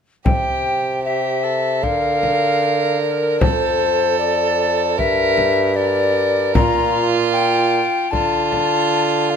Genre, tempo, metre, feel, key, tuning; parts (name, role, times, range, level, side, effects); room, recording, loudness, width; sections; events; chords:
classical, renaissance-style consort dance; 76 BPM; 4/4; straight; C mixolydian; A4 = 440 Hz
mellow hollow tenor recorder; melody; 0.2-9.4 s; Bb4 to Bb5; -19 LUFS; left 6 dB
warm violin; second line; 0.3-9.4 s; F4 to Bb4; -21 LUFS; right 8 dB
mellow bassoon; bass; 0.3-9.4 s; F2 to D3; -21 LUFS; right 2 dB
frame drum; percussion; 0.3-8.9 s; -20 LUFS; left 1 dB
light reverb; close, detailed microphones; -15 LUFS; side -7 dB against mid
0.3-9.4 A section
0.3 C; 1.8 Bb/D; 3.4 F; 5.0 Gm; 6.6 Bb5; 8.1 Dm